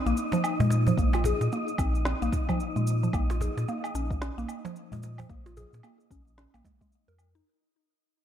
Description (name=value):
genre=organic downtempo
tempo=111 BPM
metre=4/4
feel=swing 60% on 16ths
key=Bb minor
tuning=A4 = 440 Hz
part: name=mallet-like synth pluck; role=arpeggios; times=0.0-7.5 s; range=F3 to Bb4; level=-31 LUFS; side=equal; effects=chorus, phaser, ping-pong delay
part: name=wind-like tuned noise texture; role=texture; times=0.0-7.5 s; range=Eb4 to Eb5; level=-35 LUFS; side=left 1 dB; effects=built-in reverb
part: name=warm sub bass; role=bass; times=0.1-7.4 s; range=Bb1 to Bb2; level=-28 LUFS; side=equal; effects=sidechain pumping
part: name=electronic shaker, woodblock and snare drum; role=drums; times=0.1-7.4 s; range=none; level=-37 LUFS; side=equal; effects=overdrive
part: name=cajon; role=percussion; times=0.3-6.8 s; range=none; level=-35 LUFS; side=right 2 dB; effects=none
part: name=electronic kick drum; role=drums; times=1.0-6.9 s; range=none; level=-30 LUFS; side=equal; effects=overdrive
room=moderate lush hall reverb, RT60 1.6 s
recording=dark, warm production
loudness=-25 LUFS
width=side -10 dB against mid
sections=0.0-7.5 A section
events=fade-out 0.0-7.5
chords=0.0 Bb9sus4; 3.1 Bbm7